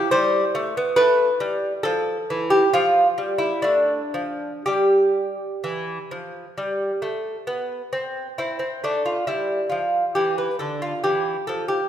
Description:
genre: classical, baroque-style dance for lute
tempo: 58-70 BPM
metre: 4/4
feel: rubato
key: C major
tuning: A4 = 440 Hz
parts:
  - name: lute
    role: solo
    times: 0.0-11.9 s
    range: D3 to C5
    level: -20 LUFS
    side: equal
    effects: none
room: moderate scoring stage reverb, RT60 1.8 s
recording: minimal, uncompressed stereo recording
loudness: -20 LUFS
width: side -10 dB against mid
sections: 0.0-8.4 A section; 8.4-11.9 A section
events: none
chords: 0.0 C; 1.0 A5; 2.7 Dm/F; 4.7 Em; 6.6 G; 8.4 C (rootless)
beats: 0.12 | 0.99 1.86 2.73 3.65 | 4.67 5.63 6.57 7.49 | 8.41 9.30 10.16 11.03

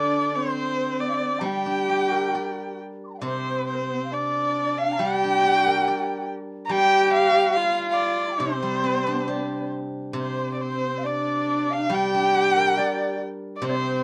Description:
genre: chinese traditional, Chinese chamber ensemble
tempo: 69 BPM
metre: 2/4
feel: rubato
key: G yu mode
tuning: A4 = 437 Hz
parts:
  - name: rich erhu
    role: melody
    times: 0.0-14.0 s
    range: C5 to Bb5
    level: -26 LUFS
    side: equal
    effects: none
  - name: reedy large dizi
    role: second line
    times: 0.0-14.0 s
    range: Bb4 to D6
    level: -31 LUFS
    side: equal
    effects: none
  - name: warm horsehead fiddle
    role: second line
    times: 0.0-14.0 s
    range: C4 to G4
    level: -30 LUFS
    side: equal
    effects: none
  - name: steel-string zither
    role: accompaniment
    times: 0.0-14.0 s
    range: C3 to D5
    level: -32 LUFS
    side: equal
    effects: none
room: moderate small room reverb, RT60 0.6 s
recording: none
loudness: -24 LUFS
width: mono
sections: 0.0-3.2 A section; 3.2-14.0 B section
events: none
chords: none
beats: 0.59 | 1.46 2.35 | 3.24 4.13 | 5.01 5.87 | 6.72 7.57 | 8.42 9.29 | 10.16 11.04 | 11.92 12.79 | 13.63

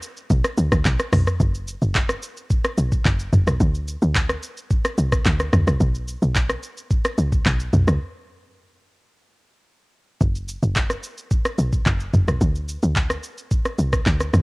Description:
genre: amapiano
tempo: 109 BPM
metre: 4/4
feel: straight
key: unclear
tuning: A4 = 440 Hz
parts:
  - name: afro-pop drum kit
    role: drums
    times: 0.0-14.4 s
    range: handclaps, hi-hat, kick drum, rim click, shaker, toms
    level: -20 LUFS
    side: equal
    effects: cassette tape
  - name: tight log drum bass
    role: bass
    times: 0.3-14.4 s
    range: F#1 to D2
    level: -21 LUFS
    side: equal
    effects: none
room: digital ambience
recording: home recording on cassette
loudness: -19 LUFS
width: side -27 dB against mid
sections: 0.0-10.2 A section; 10.2-14.4 B section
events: drop 0.0-10.2; break 8.0-10.2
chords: none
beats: 0.30 0.85 | 1.40 1.95 2.50 3.05 | 3.60 4.15 4.70 5.25 | 5.80 6.36 6.91 7.46 | 8.01 8.56 9.11 9.66 | 10.21 10.76 11.31 11.86 | 12.41 12.96 13.51 14.06

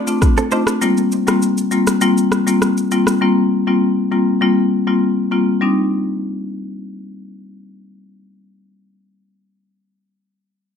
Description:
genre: afrobeats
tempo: 100 BPM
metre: 4/4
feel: straight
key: C dorian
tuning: A4 = 440 Hz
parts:
  - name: marimba with hard mallets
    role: accompaniment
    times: 0.0-9.5 s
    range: G3 to F4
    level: -15 LUFS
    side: left 2 dB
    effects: none
  - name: direct-recorded clean electric guitar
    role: riff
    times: 0.0-0.6 s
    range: C4 to C5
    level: -24 LUFS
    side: right 6 dB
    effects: ping-pong delay
  - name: deep house drum kit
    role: drums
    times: 0.1-3.2 s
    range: kick drum, rim click, shaker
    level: -20 LUFS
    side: equal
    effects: none
room: light reverb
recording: dark, warm production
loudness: -14 LUFS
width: side -7 dB against mid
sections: 0.0-5.6 A section; 5.6-8.0 B section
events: none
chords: 0.0 Dm7; 0.8 Gmadd11; 5.6 Cmadd9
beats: 0.22 | 0.82 1.42 2.02 2.62 | 3.22 3.82 4.42 5.02 | 5.62 6.22 6.82 7.42

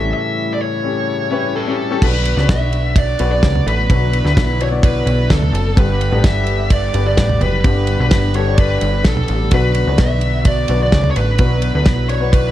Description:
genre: piano-driven pop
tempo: 128 BPM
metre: 4/4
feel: straight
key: B minor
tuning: A4 = 439 Hz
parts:
  - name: bluesy overdriven lead guitar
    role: melody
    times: 0.0-12.5 s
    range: A4 to E5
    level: -21 LUFS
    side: right 1 dB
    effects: distortion
  - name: warm baby grand piano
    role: accompaniment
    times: 0.0-12.5 s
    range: G2 to A5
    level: -22 LUFS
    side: left 6 dB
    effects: none
  - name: chorused pulse-width pad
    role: sustained chords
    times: 0.0-12.5 s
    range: C#3 to G4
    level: -27 LUFS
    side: equal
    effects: none
  - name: plucky analog bass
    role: bass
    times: 0.0-12.5 s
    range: F#1 to D2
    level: -17 LUFS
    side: equal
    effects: none
  - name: damped 70s drum kit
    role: drums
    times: 2.0-12.4 s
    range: crash cymbal, kick drum, ride cymbal, snare drum, toms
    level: -16 LUFS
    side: equal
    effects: none
room: light reverb, small room ambience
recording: dark, warm production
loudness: -13 LUFS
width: side -13 dB against mid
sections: 0.0-2.0 A section; 2.0-12.5 B section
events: grand piano fill 1.1-2.0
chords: 0.0 A7; 2.0 Bm; 5.8 G; 9.5 Bm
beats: | 0.15 0.62 1.08 1.55 | 2.02 2.49 2.96 3.43 | 3.90 4.37 4.83 5.30 | 5.77 6.24 6.71 7.17 | 7.64 8.11 8.58 9.05 | 9.52 9.99 10.45 10.92 | 11.39 11.86 12.33

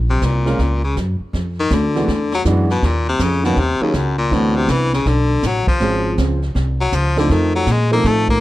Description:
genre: jazz, small-group swing and bop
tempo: 161 BPM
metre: 4/4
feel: swing 65% on 8ths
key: unclear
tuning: A4 = 440 Hz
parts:
  - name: upright bass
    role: bass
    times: 0.0-8.4 s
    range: Ab1 to Bb2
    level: -18 LUFS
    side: equal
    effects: none
  - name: edgy baritone saxophone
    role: melody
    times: 0.1-8.4 s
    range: Eb2 to Bb3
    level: -19 LUFS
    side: left 3 dB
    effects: none
  - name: jazz brush drum kit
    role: drums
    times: 0.2-8.4 s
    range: brushed snare drum, hi-hat, kick drum, snare drum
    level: -24 LUFS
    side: right 1 dB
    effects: none
  - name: clear upright piano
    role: accompaniment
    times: 0.5-8.4 s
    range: Eb3 to Bb4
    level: -21 LUFS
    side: right 2 dB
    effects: none
room: studio reverb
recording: none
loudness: -15 LUFS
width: side -16 dB against mid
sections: 0.0-8.4 A section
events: baritone saxophone solo 0.0-8.4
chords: 0.0 Bbm; 1.3 Fm; 2.1 E9; 2.8 Ebm7; 4.3 D13; 5.8 Dbmaj7; 7.3 F7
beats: 0.22 0.59 0.96 | 1.33 1.71 2.08 2.45 | 2.82 3.20 3.57 3.94 | 4.31 4.69 5.06 5.43 | 5.80 6.18 6.55 6.92 | 7.29 7.67 8.04

